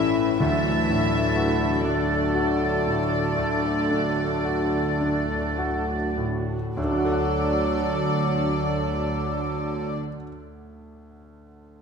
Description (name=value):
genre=classical, romantic movement for piano and orchestra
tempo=33-42 BPM (dotted quarters)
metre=12/8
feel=rubato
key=D major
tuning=A4 = 441 Hz
part: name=clear grand piano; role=melody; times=0.0-11.8 s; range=D2 to F#5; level=-29 LUFS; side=left 1 dB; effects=none
part: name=warm symphonic violin section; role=melody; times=0.0-9.9 s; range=D5 to E5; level=-33 LUFS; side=left 3 dB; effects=none
part: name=mellow cor anglais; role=second line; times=0.0-9.9 s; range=A4 to B4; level=-34 LUFS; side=right 4 dB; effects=none
part: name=mellow hollow large flute ensemble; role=second line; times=0.0-9.9 s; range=B5 to A6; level=-32 LUFS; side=left 1 dB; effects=none
part: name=warm clarinet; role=second line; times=0.0-9.9 s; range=D4 to D5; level=-35 LUFS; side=left 4 dB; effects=none
part: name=warm symphonic violin section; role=second line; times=0.0-9.9 s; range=D4 to E5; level=-37 LUFS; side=left 3 dB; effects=none
part: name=dark symphonic viola section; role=accompaniment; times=0.0-9.9 s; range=C#4 to F#4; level=-33 LUFS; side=right 2 dB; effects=none
part: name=warm bassoon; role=accompaniment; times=0.0-9.9 s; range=F#3 to A3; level=-32 LUFS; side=right 1 dB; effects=none
part: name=mellow French horn section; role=sustained chords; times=0.0-10.0 s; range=E3 to D4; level=-30 LUFS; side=left 4 dB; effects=none
part: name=rich studio double bass section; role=bass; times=0.0-9.9 s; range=A1 to D2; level=-31 LUFS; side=right 3 dB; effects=none
part: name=warm symphonic cello section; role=bass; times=0.0-9.9 s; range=D3 to E3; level=-32 LUFS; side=right 2 dB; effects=none
part: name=timpani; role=percussion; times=0.4-9.9 s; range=D3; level=-32 LUFS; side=right 1 dB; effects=none
room=wet scoring stage reverb, RT60 1.8 s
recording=none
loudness=-22 LUFS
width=side -6 dB against mid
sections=0.0-6.8 A section; 6.8-11.8 B section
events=slowing down 0.0-6.8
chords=0.4 D